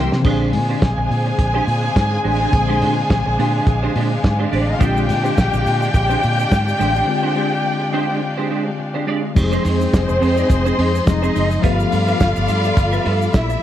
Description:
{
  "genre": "disco",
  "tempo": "105 BPM",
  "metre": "4/4",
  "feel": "swing 56% on 16ths",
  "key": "unclear",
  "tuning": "A4 = 440 Hz",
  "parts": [
    { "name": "clean electric guitar", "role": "accompaniment", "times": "0.0-13.5 s", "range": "Ab3 to E5", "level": "-24 LUFS", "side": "right 6 dB", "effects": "ensemble chorus" },
    { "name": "mellow tine electric piano", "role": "accompaniment", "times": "0.0-13.6 s", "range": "D3 to G5", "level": "-24 LUFS", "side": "left 5 dB", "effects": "medium stereo tremolo" },
    { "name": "clear studio string section", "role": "sustained chords", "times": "0.0-13.6 s", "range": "Ab3 to C6", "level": "-27 LUFS", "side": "left 1 dB", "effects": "none" },
    { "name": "vintage muted fingered electric bass", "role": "bass", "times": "0.0-13.5 s", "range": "F1 to C3", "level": "-20 LUFS", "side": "equal", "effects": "none" },
    { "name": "warm soul drum kit", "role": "drums", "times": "0.1-13.5 s", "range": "crash cymbal, hi-hat, kick drum, snare drum", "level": "-19 LUFS", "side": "equal", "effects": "none" },
    { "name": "warm studio violin section", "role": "second line", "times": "0.2-13.6 s", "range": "C4 to Ab5", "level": "-21 LUFS", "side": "left 2 dB", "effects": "none" },
    { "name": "egg shaker", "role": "percussion", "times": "4.8-13.6 s", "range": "none", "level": "-44 LUFS", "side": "right 12 dB", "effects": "none" }
  ],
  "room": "light reverb, studio reverb",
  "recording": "cassette tape",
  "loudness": "-15 LUFS",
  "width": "side -11 dB against mid",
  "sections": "0.3-9.4 A section; 9.4-13.6 B section",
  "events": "drum fill 0.0; tine electric piano fill 0.0; break 7.1-9.4",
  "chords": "0.3 Bb13; 9.4 Fm7; 11.6 G13"
}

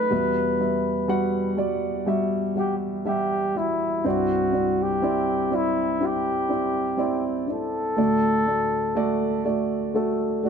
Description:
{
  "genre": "pop ballad",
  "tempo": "61 BPM",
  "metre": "4/4",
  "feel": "straight",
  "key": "E minor",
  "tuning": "A4 = 440 Hz",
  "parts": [
    { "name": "mellow flugelhorn", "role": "melody", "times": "0.0-10.5 s", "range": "E4 to B4", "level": "-25 LUFS", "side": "equal", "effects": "none" },
    { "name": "dark upright piano", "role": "accompaniment", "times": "0.0-10.5 s", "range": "C2 to F#5", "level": "-24 LUFS", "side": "equal", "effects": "none" }
  ],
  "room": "light reverb",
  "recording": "dark, warm production",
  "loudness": "-21 LUFS",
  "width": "side -6 dB against mid",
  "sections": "0.0-10.5 A section",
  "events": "none",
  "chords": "0.1 Emadd9; 4.0 Cadd9; 8.0 D"
}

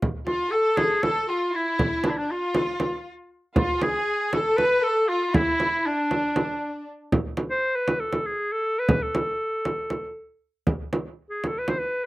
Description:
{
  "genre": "Turkish makam ensemble",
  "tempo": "237 BPM (eighths)",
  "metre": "7/8",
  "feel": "straight",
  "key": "unclear",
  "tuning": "A4 = 441 Hz",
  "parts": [
    { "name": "frame drum", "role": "percussion", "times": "0.0-11.8 s", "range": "none", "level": "-24 LUFS", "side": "right 1 dB", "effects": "none" },
    { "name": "bright clarinet", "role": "melody", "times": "0.3-12.1 s", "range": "D4 to C5", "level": "-24 LUFS", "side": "equal", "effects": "slapback echo" },
    { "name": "rich chamber violin section", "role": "second line", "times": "0.3-6.9 s", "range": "D4 to B4", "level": "-28 LUFS", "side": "left 1 dB", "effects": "none" }
  ],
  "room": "little or no reverb",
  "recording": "recorded outdoors, with no room sound",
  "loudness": "-22 LUFS",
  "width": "side -19 dB against mid",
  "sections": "0.0-7.1 A section; 7.1-12.1 B section",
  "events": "none",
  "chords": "none"
}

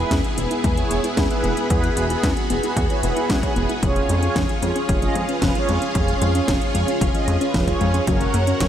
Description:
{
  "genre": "italo disco",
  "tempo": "113 BPM",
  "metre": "4/4",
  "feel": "straight",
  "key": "unclear",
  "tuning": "A4 = 440 Hz",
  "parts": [
    { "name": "string machine, full ensemble", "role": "sustained chords", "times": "0.0-8.7 s", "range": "B3 to A#4", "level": "-25 LUFS", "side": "equal", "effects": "ensemble chorus" },
    { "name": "soft round pluck", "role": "arpeggios", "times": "0.0-8.7 s", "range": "E#3 to E4", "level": "-28 LUFS", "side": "left 3 dB", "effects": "chorus, cassette tape, tape echo" },
    { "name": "mellow synth brass", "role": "stabs", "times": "0.0-8.6 s", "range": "B3 to D#5", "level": "-25 LUFS", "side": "right 2 dB", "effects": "chorus, tape echo" },
    { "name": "chorused synth bass", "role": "bass", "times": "0.0-8.7 s", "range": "E1 to F#2", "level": "-24 LUFS", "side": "equal", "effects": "none" },
    { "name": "electronic kick drum", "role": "drums", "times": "0.1-8.7 s", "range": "none", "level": "-24 LUFS", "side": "equal", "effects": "overdrive" },
    { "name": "house drum kit", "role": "drums", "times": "0.1-8.7 s", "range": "hi-hat, snare drum", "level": "-28 LUFS", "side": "equal", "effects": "overdrive" }
  ],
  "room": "moderate lush hall reverb, RT60 2.0 s",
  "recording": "dreamy mix soaked in reverb",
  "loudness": "-18 LUFS",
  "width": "side -10 dB against mid",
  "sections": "0.0-8.7 A section",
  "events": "filter sweep on synth arpeggio sound 0.0-8.7",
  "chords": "0.0 E; 3.8 C#/E#; 8.1 F#"
}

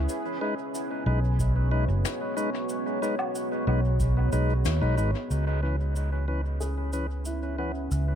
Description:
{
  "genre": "ambient dub",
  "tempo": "92 BPM",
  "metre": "4/4",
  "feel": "straight",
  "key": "C# minor",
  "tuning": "A4 = 440 Hz",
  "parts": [
    { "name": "deep dark ambient pad", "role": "sustained chords", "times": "0.0-8.2 s", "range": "B3 to E5", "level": "-32 LUFS", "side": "equal", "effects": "chorus, built-in reverb" },
    { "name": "felt-muted upright piano", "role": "arpeggios", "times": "0.0-0.2, 6.6-8.2 s", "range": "E4 to F#5", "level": "-41 LUFS", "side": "right 2 dB", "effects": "low-pass filter, dub echo" },
    { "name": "fingered electric bass", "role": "bass", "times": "0.0-8.2 s", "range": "F#1 to D#2", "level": "-25 LUFS", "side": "equal", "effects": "none" },
    { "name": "cabasa, snare drum and woodblock", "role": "drums", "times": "0.1-8.0 s", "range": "none", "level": "-37 LUFS", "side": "left 2 dB", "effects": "dub echo" },
    { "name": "tonewheel organ", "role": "stabs", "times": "0.4-7.7 s", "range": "E3 to B4", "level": "-33 LUFS", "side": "left 2 dB", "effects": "stopped rotary speaker, low-pass filter, dub echo" },
    { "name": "electronic kick drum", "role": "drums", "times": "1.4-4.1 s", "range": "none", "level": "-31 LUFS", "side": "equal", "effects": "none" }
  ],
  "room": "light reverb, small room reverb",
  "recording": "echo-heavy mix",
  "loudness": "-25 LUFS",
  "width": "side -9 dB against mid",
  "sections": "0.0-5.3 A section; 5.3-8.2 B section",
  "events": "band accent 4.7-5.0; filter sweep on felt piano 5.3-8.2",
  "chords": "0.1 B6; 5.3 C#m7"
}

